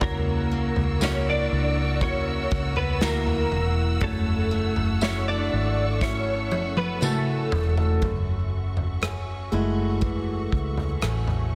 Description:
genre	pop ballad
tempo	60 BPM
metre	4/4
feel	straight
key	F# minor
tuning	A4 = 441 Hz
part	direct-recorded clean electric guitar	melody	0.0-7.7 s	A3 to D5	-31 LUFS	equal	ensemble chorus, tape echo
part	warm upright piano	accompaniment	0.0-11.6 s	C#3 to E5	-32 LUFS	equal	none
part	warm studio string section	sustained chords	0.0-11.6 s	F#4 to E6	-38 LUFS	equal	none
part	picked steel-string acoustic guitar	arpeggios	0.0-11.6 s	F#2 to A4	-41 LUFS	equal	tape echo
part	vintage muted fingered electric bass	bass	0.0-11.6 s	E1 to D2	-29 LUFS	equal	none
part	unplugged drum kit	drums	0.0-11.5 s	kick drum, rim click, snare drum, toms	-30 LUFS	equal	none
part	tambourine	percussion	1.0-7.3 s	none	-39 LUFS	equal	none
room	light reverb, studio ambience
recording	dense, heavily limited modern master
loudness	-25 LUFS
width	mono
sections	0.0-8.0 A section; 8.0-11.6 B section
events	drum fill 6.0-8.0; upright piano solo 8.0-11.6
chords	0.0 F#7/C#; 4.0 F#m7

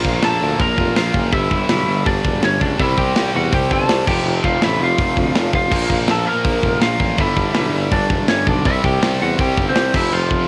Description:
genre	punk rock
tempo	164 BPM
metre	4/4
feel	straight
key	unclear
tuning	A4 = 440 Hz
part	lightly driven lead guitar	melody	0.0-10.5 s	C4 to Bb5	-23 LUFS	equal	none
part	biting overdriven guitar	riff	0.0-10.5 s	F2 to C4	-29 LUFS	equal	none
part	distorted electric guitar	riff	0.0-10.5 s	F2 to C4	-29 LUFS	equal	overdrive, cassette tape
part	distorted electric guitar	riff	0.0-10.5 s	F2 to C4	-27 LUFS	equal	distortion, cassette tape
part	warm tuba	bass	0.0-10.5 s	E1 to E2	-25 LUFS	equal	none
part	tight metal drum kit	drums	0.0-10.4 s	crash cymbal, hi-hat, kick drum, snare drum	-22 LUFS	equal	cassette tape
room	light reverb, small room ambience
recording	home recording on cassette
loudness	-17 LUFS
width	mono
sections	0.0-10.5 A section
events	none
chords	0.0 Bb; 1.3 G5; 2.8 C; 4.1 F5; 5.7 Bb5; 7.2 G; 8.7 C; 9.9 F5

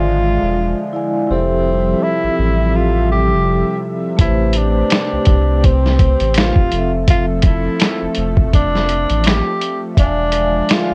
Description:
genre	lo-fi hip hop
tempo	83 BPM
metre	4/4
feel	swing 57% on 16ths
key	unclear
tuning	A4 = 442 Hz
part	breathy tenor saxophone	melody	0.0-10.9 s	C4 to G4	-22 LUFS	equal	low-pass filter, plate reverb
part	vibraphone with medium mallets	accompaniment	0.0-10.9 s	F3 to G#5	-24 LUFS	equal	low-pass filter, plate reverb
part	lush unison pad	sustained chords	0.0-10.9 s	C3 to E5	-26 LUFS	equal	chorus, low-pass filter
part	round analog bass	bass	0.0-10.9 s	E1 to C2	-20 LUFS	equal	none
part	lo-fi sampler-style drum kit	drums	4.2-10.9 s	finger snaps, hi-hat, kick drum, snare drum	-16 LUFS	equal	none
room	light reverb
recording	cassette tape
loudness	-15 LUFS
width	mono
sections	0.0-10.9 A section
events	none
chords	0.0 E7b9; 1.3 Fmaj9; 4.2 Am9; 6.7 Fmaj7; 10.0 E7b9

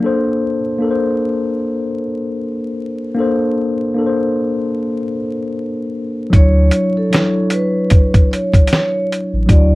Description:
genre	lo-fi hip hop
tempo	76 BPM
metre	4/4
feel	swing 58% on 16ths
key	unclear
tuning	A4 = 442 Hz
part	mellow tine electric piano	accompaniment	0.0-9.8 s	F#3 to C#5	-17 LUFS	left 1 dB	slow stereo tremolo, cassette tape
part	vibraphone with soft mallets	melody	6.3-9.8 s	A4 to D5	-20 LUFS	right 1 dB	analog delay
part	warm sub bass	bass	6.3-9.8 s	A1 to D2	-12 LUFS	equal	none
part	dusty soul sampler-style drum kit	drums	6.3-9.7 s	hi-hat, kick drum, snare drum	-11 LUFS	equal	none
room	moderate small room reverb, RT60 0.6 s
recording	vinyl crackle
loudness	-14 LUFS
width	side -20 dB against mid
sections	0.0-9.8 A section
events	break 0.0-6.3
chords	0.0 Bbmaj9; 6.3 Dmaj9

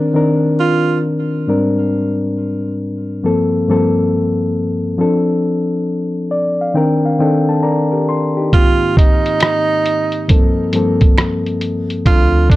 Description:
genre	lo-fi hip hop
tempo	68 BPM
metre	4/4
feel	swing 63% on 16ths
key	G minor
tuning	A4 = 441 Hz
part	mellow reed electric piano	accompaniment	0.0-12.6 s	G2 to C6	-15 LUFS	left 1 dB	none
part	breathy tenor saxophone	melody	0.6-1.0, 8.5-12.6 s	D4 to F4	-18 LUFS	right 4 dB	none
part	lo-fi sampler-style drum kit	drums	8.5-12.6 s	hi-hat, kick drum, rim click	-12 LUFS	equal	vintage 12-bit sampler grit
part	finger snap	percussion	9.4-11.4 s	none	-30 LUFS	right 9 dB	none
part	upright bass	bass	12.1-12.6 s	D2	-15 LUFS	right 1 dB	none
room	light reverb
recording	cassette tape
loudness	-13 LUFS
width	side -17 dB against mid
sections	0.0-12.6 A section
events	reed electric piano fill 5.9-8.5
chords	0.0 Cm9; 1.5 Abmaj9#11; 3.2 Gm11; 5.0 Dm7; 6.8 Cm9; 8.5 Abmaj9; 10.3 Gm11; 12.1 Dm7

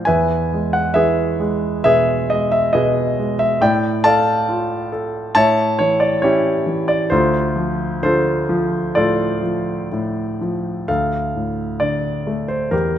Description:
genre	classical, lyrical solo piano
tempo	60-69 BPM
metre	4/4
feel	rubato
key	unclear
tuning	A4 = 440 Hz
part	warm concert grand piano	solo	0.0-13.0 s	D2 to A5	-16 LUFS	equal	none
room	moderate concert hall reverb, RT60 2.0 s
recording	none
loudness	-16 LUFS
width	side -10 dB against mid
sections	0.0-10.9 A section; 10.9-13.0 B section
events	none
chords	0.1 E; 3.6 Dm/A; 5.4 A7; 7.1 Dm7

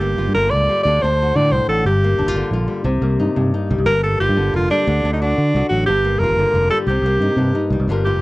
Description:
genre	highlife guitar band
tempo	120 BPM (dotted quarters)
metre	12/8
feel	straight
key	G minor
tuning	A4 = 440 Hz
part	bright alto saxophone	melody	0.0-8.2 s	D4 to D5	-18 LUFS	equal	none
part	flamenco guitar	accompaniment	0.0-8.2 s	G2 to Bb4	-22 LUFS	left 2 dB	cassette tape
part	fingered electric bass	bass	0.0-8.2 s	F1 to D3	-19 LUFS	equal	none
room	light reverb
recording	home recording on cassette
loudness	-15 LUFS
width	side -20 dB against mid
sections	0.0-7.9 A section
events	none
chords	0.0 Gm7; 0.9 D; 1.9 Gm7; 2.9 Cm7; 3.9 Gm7; 4.9 D; 5.9 Gm7; 6.9 Cm7

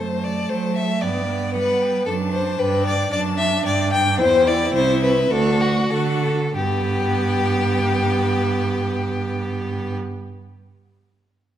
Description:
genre	quick classical-period movement for string quartet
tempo	91-115 BPM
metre	2/4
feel	straight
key	G major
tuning	A4 = 440 Hz
part	clear violin	melody	0.0-10.0 s	D5 to A5	-31 LUFS	left 11 dB	none
part	rich violin	second line	0.0-9.9 s	F#4 to G5	-21 LUFS	left 2 dB	none
part	warm viola	accompaniment	0.0-9.9 s	A3 to F#4	-26 LUFS	right 2 dB	none
part	rich cello	bass	0.0-9.9 s	C2 to G3	-23 LUFS	right 4 dB	none
room	wet recital hall reverb, RT60 1.6 s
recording	none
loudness	-18 LUFS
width	side -10 dB against mid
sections	0.0-6.6 A section; 6.6-9.2 B section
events	slowing down 3.7-6.6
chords	0.0 F#m7b5; 1.0 G; 2.1 D/F#; 2.6 G; 3.1 D/F#; 3.7 G5; 4.2 C/E; 4.7 C; 5.3 D; 6.6 G

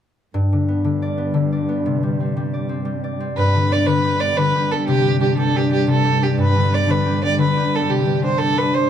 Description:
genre	celtic folk, Celtic slip jig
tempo	119 BPM (dotted quarters)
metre	9/8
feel	straight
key	G major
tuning	A4 = 440 Hz
part	concert harp	accompaniment	0.3-8.9 s	G2 to D5	-18 LUFS	left 2 dB	none
part	rich cello	drone	0.4-8.9 s	G2	-26 LUFS	right 4 dB	none
part	rich fiddle	melody	3.4-8.9 s	G4 to D5	-19 LUFS	right 2 dB	tape echo
room	moderate small room reverb, RT60 0.5 s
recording	dark, warm production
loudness	-16 LUFS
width	side -9 dB against mid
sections	0.3-3.4 A section; 3.4-8.9 B section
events	none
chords	0.3 G; 1.9 Csus2; 3.4 G; 4.9 Csus2; 6.4 G; 7.9 Csus2

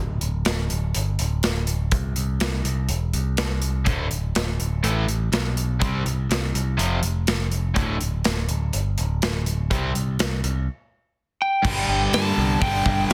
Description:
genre	hard rock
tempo	123 BPM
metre	4/4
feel	straight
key	unclear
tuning	A4 = 440 Hz
part	modern bright picked electric bass	bass	0.0-13.1 s	D1 to G2	-26 LUFS	equal	none
part	big rock drum kit	drums	0.2-13.1 s	crash cymbal, hi-hat, kick drum, snare drum	-28 LUFS	equal	soft clipping on kick
part	cranked stack guitar	riff	3.8-13.1 s	D2 to C4	-28 LUFS	equal	overdrive
part	lightly driven lead guitar	melody	11.4-13.1 s	G5 to A5	-26 LUFS	equal	none
room	light reverb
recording	dense, heavily limited modern master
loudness	-23 LUFS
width	mono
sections	0.0-11.6 A section; 11.6-13.1 B section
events	break 10.7-11.6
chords	0.0 N.C.; 1.9 C; 3.9 D5; 4.8 A5; 5.8 C5; 6.8 F5; 7.8 D5; 9.7 C5; 11.6 G5

